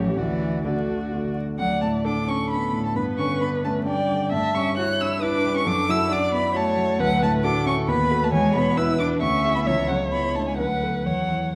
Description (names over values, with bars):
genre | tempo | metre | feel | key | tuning
quick classical-period movement for piano quartet | 133 BPM | 3/4 | rubato | D major | A4 = 440 Hz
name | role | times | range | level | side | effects
dark violin | melody | 0.0-11.6 s | C#5 to F#6 | -29 LUFS | equal | none
dark cello | second line | 0.0-11.5 s | D3 to F#4 | -30 LUFS | equal | none
dark concert grand piano | accompaniment | 0.0-11.6 s | A1 to A4 | -28 LUFS | equal | none
warm viola | accompaniment | 0.0-11.5 s | F#4 to E5 | -29 LUFS | equal | none
room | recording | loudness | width
wet recital hall reverb, RT60 1.5 s | vinyl crackle | -23 LUFS | mono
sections
0.0-1.6 A section; 1.6-11.6 B section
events
none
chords
0.2 D; 1.6 D5; 3.0 G; 4.3 Gmaj13; 5.7 D/F#; 7.0 Bm7/D; 7.9 B7/D#; 8.3 E5; 9.2 E7/D; 9.7 Bm11/C#; 10.6 Bm7/D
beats
| 0.17 0.65 1.12 | 1.59 2.05 2.50 | 2.96 3.41 3.86 | 4.32 4.77 5.22 | 5.66 6.11 6.55 | 7.00 7.44 7.89 | 8.33 8.78 9.22 | 9.67 10.13 10.59 | 11.06 11.54